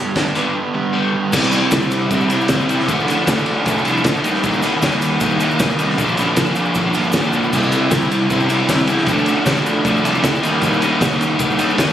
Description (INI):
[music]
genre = indie rock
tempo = 155 BPM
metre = 4/4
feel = straight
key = unclear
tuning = A4 = 440 Hz
[part]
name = crunchy overdriven guitar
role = riff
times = 0.0-11.9 s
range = G2 to E4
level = -20 LUFS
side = left 6 dB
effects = none
[part]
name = overdriven semi-hollow guitar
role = riff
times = 0.0-11.9 s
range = G2 to F4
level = -20 LUFS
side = right 5 dB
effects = wide subtle chorus, analog delay
[part]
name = fuzz picked electric bass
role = bass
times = 0.0-11.9 s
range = G1 to E2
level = -22 LUFS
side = equal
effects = overdrive
[part]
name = loose indie drum kit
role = drums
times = 0.2-11.9 s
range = crash cymbal, hi-hat, kick drum, ride cymbal, snare drum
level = -19 LUFS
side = equal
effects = none
[part]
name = egg shaker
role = percussion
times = 1.3-11.9 s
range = none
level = -34 LUFS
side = left 1 dB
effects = none
[sound]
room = light reverb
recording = recorded on a phone in the room, studio reverb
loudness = -14 LUFS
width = side -10 dB against mid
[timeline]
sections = 0.0-1.3 A section; 1.3-11.9 B section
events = drum fill 7.3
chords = 0.0 G; 1.3 C; 2.9 Dm; 4.2 Eb; 6.0 Bb; 7.5 C; 9.1 Dm; 10.4 Eb